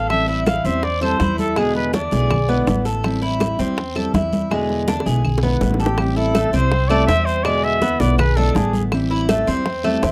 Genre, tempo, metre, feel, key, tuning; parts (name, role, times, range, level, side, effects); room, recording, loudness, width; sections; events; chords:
latin, Cuban son and guajira; 163 BPM; 4/4; straight; A minor; A4 = 438 Hz
breathy trumpet; melody; 0.0-2.8, 5.8-8.8 s; G4 to F5; -24 LUFS; equal
fingerpicked steel-string acoustic guitar; accompaniment; 0.0-10.1 s; B2 to E4; -26 LUFS; equal
Cuban tres; arpeggios; 0.0-10.1 s; G#3 to A4; -25 LUFS; equal
upright bass; bass; 0.0-10.1 s; A1 to E2; -24 LUFS; equal
bongos; percussion; 0.1-10.1 s; -26 LUFS; equal
claves; percussion; 0.1-10.0 s; -34 LUFS; equal
congas; percussion; 0.1-10.1 s; -28 LUFS; equal
guiro; percussion; 0.1-10.1 s; -40 LUFS; equal
light reverb; dry, close 1970s-style studio recording; -19 LUFS; mono
0.0-6.0 A section; 6.0-10.1 B section
drum fill 4.9-6.0
0.1 Am7; 1.6 E7; 3.0 Am7; 4.5 E7; 6.0 Am7; 7.5 E7; 8.9 Am7